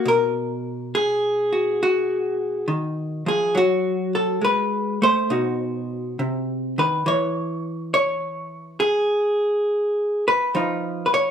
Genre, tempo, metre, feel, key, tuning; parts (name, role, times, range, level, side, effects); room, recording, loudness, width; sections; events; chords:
solo jazz; 69 BPM; 4/4; swing 68% on 8ths; A4 = 441 Hz
vintage hollow-body jazz guitar; solo; 0.0-11.3 s; B2 to Db5; -20 LUFS; equal
light reverb; band playing live in one room; -20 LUFS; side -8 dB against mid
0.0-11.3 A section
0.0 Bmaj7; 3.5 Gbm; 5.3 B; 7.0 N.C.; 10.5 Db9/F